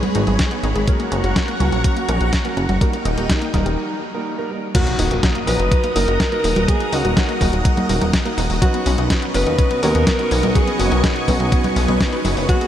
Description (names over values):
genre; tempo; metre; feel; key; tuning
italo disco; 124 BPM; 4/4; straight; unclear; A4 = 440 Hz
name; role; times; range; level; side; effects
string machine, full ensemble; sustained chords; 0.0-12.7 s; G#3 to D#6; -24 LUFS; equal; ensemble chorus
analog pluck; arpeggios; 0.0-12.7 s; F#3 to C#5; -28 LUFS; left 2 dB; chorus, cassette tape, diffuse ambient delay
dark concert grand piano; stabs; 0.0-12.7 s; F#3 to A#5; -26 LUFS; right 4 dB; analog chorus, diffuse ambient delay
clean 12-bit digital drum machine; drums; 0.0-12.7 s; congas, crash cymbal, hi-hat, snare drum; -23 LUFS; equal; none
chorused synth bass; bass; 0.1-12.5 s; D#1 to D#2; -21 LUFS; equal; tube saturation
electronic kick drum; drums; 0.4-12.6 s; none; -18 LUFS; equal; none
warm alto saxophone; melody; 4.7-12.7 s; F#4 to B4; -23 LUFS; equal; diffuse ambient delay
impact; sound effects; 4.7-6.7 s; none; -30 LUFS; equal; none
room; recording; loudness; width
moderate huge ambient reverb, RT60 8.1 s; dreamy mix soaked in reverb; -16 LUFS; side -11 dB against mid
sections
0.0-4.7 A section; 4.7-12.7 B section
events
break 3.8-4.7; impact 4.7-6.7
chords
0.0 G#m; 0.9 F#; 2.8 D#; 4.7 D#m; 8.6 Badd9